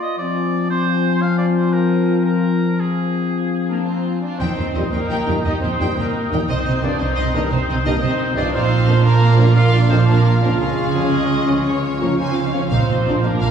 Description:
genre	cinematic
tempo	115 BPM (dotted quarters)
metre	12/8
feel	straight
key	unclear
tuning	A4 = 440 Hz
part	clear oboe	second line	0.0-13.5 s	Ab4 to G5	-28 LUFS	right 2 dB	none
part	mellow clarinet	second line	0.0-13.5 s	C4 to F4	-26 LUFS	left 4 dB	none
part	mellow flute section	second line	0.0-13.5 s	F5 to Eb6	-33 LUFS	left 1 dB	none
part	mellow French horn section	sustained chords	0.2-13.1 s	F3 to F4	-22 LUFS	left 2 dB	none
part	warm symphonic violin section	second line	3.7-13.5 s	Db4 to Bb4	-27 LUFS	left 2 dB	none
part	clear symphonic viola section	accompaniment	3.7-13.5 s	Ab3 to F4	-27 LUFS	left 1 dB	none
part	bright trumpet section	stabs	3.7-13.5 s	Ab4 to F5	-25 LUFS	right 1 dB	none
part	clear symphonic violin section	melody	4.4-13.5 s	C5 to Ab5	-28 LUFS	left 3 dB	none
part	rich studio cello section	bass	4.4-13.5 s	Bb2 to Eb3	-22 LUFS	right 2 dB	none
part	rich symphonic double bass section	bass	4.4-13.5 s	Bb1 to Eb2	-19 LUFS	right 3 dB	none
part	warm trombone section	sustained chords	4.8-13.1 s	F2 to F3	-29 LUFS	right 2 dB	none
room	wet scoring stage reverb, RT60 1.6 s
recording	heard from further back in the room, small room ambience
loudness	-15 LUFS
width	side -8 dB against mid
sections	0.0-4.4 A section; 4.4-13.5 A section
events	none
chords	0.2 Fm; 4.4 Eb; 6.5 Cm; 8.5 Bb; 10.6 Db; 12.7 Bb

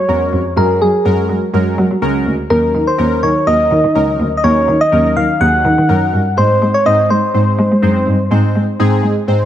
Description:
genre	dance-pop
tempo	124 BPM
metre	4/4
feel	straight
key	unclear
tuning	A4 = 439 Hz
part	soft struck synth lead	melody	0.0-9.5 s	Ab4 to Gb5	-15 LUFS	equal	chorus, digital delay
part	muted cello	bass	0.0-9.4 s	Db2 to Ab3	-14 LUFS	equal	none
part	warm analog keys	accompaniment	0.1-9.5 s	Gb3 to C5	-18 LUFS	equal	chorus, phaser
room	light reverb, small room ambience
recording	none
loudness	-11 LUFS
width	side -11 dB against mid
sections	0.0-9.5 A section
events	synth keys fill 9.3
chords	0.0 Gbadd9; 2.5 Ebm7; 6.4 Ab

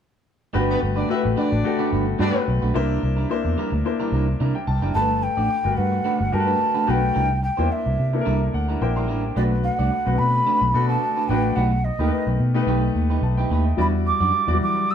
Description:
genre	pop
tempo	109 BPM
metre	4/4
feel	swing 54% on 16ths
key	G major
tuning	A4 = 441 Hz
part	clear concert grand piano	accompaniment	0.5-14.9 s	F#3 to C6	-25 LUFS	left 5 dB	none
part	electric guitar at the edge of break-up	riff	0.5-14.8 s	G3 to D5	-28 LUFS	right 6 dB	none
part	vintage muted fingered electric bass	bass	0.5-14.8 s	F#1 to E3	-22 LUFS	equal	none
part	warm horn section	second line	0.7-2.4 s	B3 to E5	-27 LUFS	left 2 dB	none
part	mellow hollow jazz flute	melody	4.9-14.9 s	D5 to E6	-22 LUFS	right 2 dB	none
room	wet studio reverb, RT60 0.7 s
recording	band playing live in one room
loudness	-19 LUFS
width	side -8 dB against mid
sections	0.5-5.0 A section; 5.0-14.9 B section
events	grand piano fill 8.3-9.4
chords	0.5 Gmaj9; 2.7 C9; 5.0 Gmaj9; 7.2 C9; 9.4 Bm7; 11.6 B7b13; 13.8 Em9

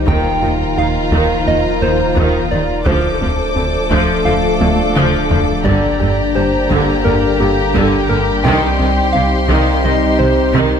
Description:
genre	cinematic, hybrid orchestral and electronic film score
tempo	86 BPM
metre	4/4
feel	straight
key	G minor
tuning	A4 = 440 Hz
part	soft struck synth lead	melody	0.0-10.8 s	G4 to G5	-20 LUFS	right 1 dB	chorus, ping-pong delay
part	warm symphonic violin section	melody	0.0-10.8 s	Bb5 to D6	-26 LUFS	left 4 dB	none
part	warm symphonic violin section	second line	0.0-10.8 s	F4 to A4	-22 LUFS	left 2 dB	none
part	dark French horn section	sustained chords	0.0-10.8 s	A3 to Eb4	-22 LUFS	left 7 dB	none
part	mellow trombone section	sustained chords	0.0-10.8 s	C3 to A3	-23 LUFS	right 4 dB	none
part	warbly tape-like pad	sustained chords	0.0-10.8 s	Eb3 to D5	-24 LUFS	left 1 dB	chorus, built-in reverb
part	pure sine sub bass	bass	0.0-10.8 s	D1 to C2	-23 LUFS	left 1 dB	none
part	rich symphonic viola section	accompaniment	0.1-10.8 s	C3 to F3	-21 LUFS	right 3 dB	none
part	soft round pluck	arpeggios	0.1-10.8 s	C3 to G4	-27 LUFS	right 1 dB	none
part	rubbery square bass	riff	0.1-10.8 s	C2 to G2	-22 LUFS	right 1 dB	none
part	rich symphonic cello section	bass	0.1-10.6 s	D2 to C3	-23 LUFS	right 2 dB	none
part	warm symphonic double bass section	bass	0.1-10.6 s	G1 to Eb2	-24 LUFS	right 3 dB	none
part	solo taiko drums	drums	0.1-10.8 s	none	-22 LUFS	left 1 dB	none
room	light reverb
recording	close, detailed microphones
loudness	-12 LUFS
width	side -7 dB against mid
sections	0.0-10.8 A section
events	drum fill 4.6-5.7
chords	0.1 Ebsus2; 2.9 Dm7; 5.7 Gm; 8.4 Cm

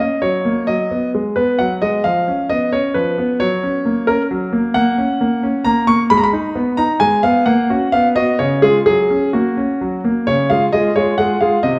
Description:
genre	classical-period piano sonatina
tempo	132 BPM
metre	3/4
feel	straight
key	F# major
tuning	A4 = 440 Hz
part	clear concert grand piano	solo	0.0-11.8 s	C3 to C#6	-16 LUFS	equal	none
room	wet recital hall reverb, RT60 1.5 s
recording	dark, warm production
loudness	-16 LUFS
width	mono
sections	0.0-10.3 A section; 10.3-11.8 B section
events	none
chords	0.0 F#; 0.7 G#m7/F#; 2.1 C#7/E#; 3.4 F#; 4.8 F#/A#; 6.1 G#m; 7.5 F#/A#; 7.9 B; 8.4 C#; 8.9 F#; 10.3 Db

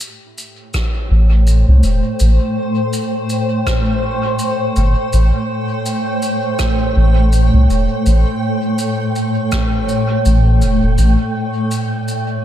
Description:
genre	ambient dub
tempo	82 BPM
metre	4/4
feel	swing 57% on 16ths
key	A minor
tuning	A4 = 440 Hz
part	granular cloud pad	sustained chords	1.2-12.4 s	A2 to G5	-17 LUFS	equal	built-in reverb
part	shaker and rim click	drums	0.0-12.2 s	none	-28 LUFS	equal	small room ambience, dub echo
part	electronic kick drum	drums	0.7-9.7 s	none	-20 LUFS	equal	small room ambience
part	soft dub sub bass	bass	1.1-11.2 s	E1 to C2	-11 LUFS	equal	none
room	small room ambience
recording	echo-heavy mix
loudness	-13 LUFS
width	side -11 dB against mid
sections	0.0-12.4 A section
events	none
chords	0.0 Am7

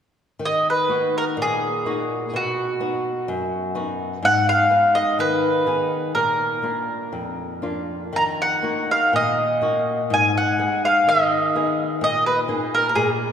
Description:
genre	fado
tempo	62 BPM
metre	2/4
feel	rubato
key	Eb harmonic minor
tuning	A4 = 440 Hz
part	flamenco guitar	accompaniment	0.4-13.3 s	F2 to Ab4	-25 LUFS	left 2 dB	none
part	mandolin	melody	0.5-13.1 s	F#4 to Bb5	-19 LUFS	right 1 dB	none
room	wet church reverb, RT60 3.3 s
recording	recorded in a church or concert hall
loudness	-18 LUFS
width	side -8 dB against mid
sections	0.4-13.3 A section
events	none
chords	0.4 Ebm; 2.3 B; 4.2 Abm; 6.1 Bb; 8.1 Ebm; 10.1 Abm; 12.0 Bb7sus4

